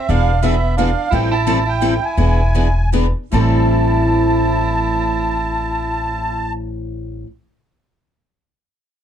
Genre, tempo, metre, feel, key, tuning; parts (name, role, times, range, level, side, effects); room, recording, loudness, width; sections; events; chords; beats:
acoustic string swing (jazz manouche); 148-174 BPM; 3/4; swing 60% on 8ths; A minor; A4 = 445 Hz
musette accordion; melody; 0.0-6.5 s; E5 to A5; -21 LUFS; right 2 dB
bright soprano saxophone; second line; 0.0-6.5 s; B3 to E4; -24 LUFS; right 6 dB
picked steel-string acoustic guitar; accompaniment; 0.1-7.3 s; A2 to A4; -21 LUFS; left 6 dB
picked steel-string acoustic guitar; accompaniment; 0.1-7.3 s; A2 to B4; -25 LUFS; right 9 dB
upright bass; bass; 0.1-7.2 s; E1 to A1; -18 LUFS; equal
light reverb; dark, warm production; -14 LUFS; side -9 dB against mid
0.0-3.3 A section; 3.3-5.8 B section
slowing down 1.1-3.3
0.1 E7b9; 1.1 Am7; 2.2 E7; 3.3 Am7
| 0.09 0.43 0.78 | 1.12 1.47 1.82 | 2.18 2.55 2.93 | 3.33 3.73 4.14 | 4.55 4.95 5.36